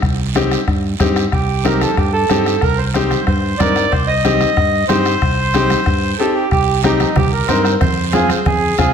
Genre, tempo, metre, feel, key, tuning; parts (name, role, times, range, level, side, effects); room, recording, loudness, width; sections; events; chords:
latin, cumbia; 185 BPM; 4/4; straight; C dorian; A4 = 440 Hz
fingered electric bass; bass; 0.0-8.9 s; C2 to G2; -19 LUFS; right 1 dB
bombo; percussion; 0.0-8.9 s; -21 LUFS; left 2 dB
guiro; percussion; 0.0-8.9 s; -28 LUFS; right 9 dB
bright upright piano; accompaniment; 0.4-8.9 s; C4 to Bb4; -19 LUFS; left 4 dB
congas; percussion; 0.4-8.9 s; -23 LUFS; right 4 dB
accordion; second line; 1.3-8.9 s; Eb4 to Eb5; -18 LUFS; right 2 dB
moderate large studio reverb, RT60 1.2 s; -13 LUFS; side -7 dB against mid
0.0-6.5 A section; 6.5-8.9 B section
0.0 Cm; 7.8 Fm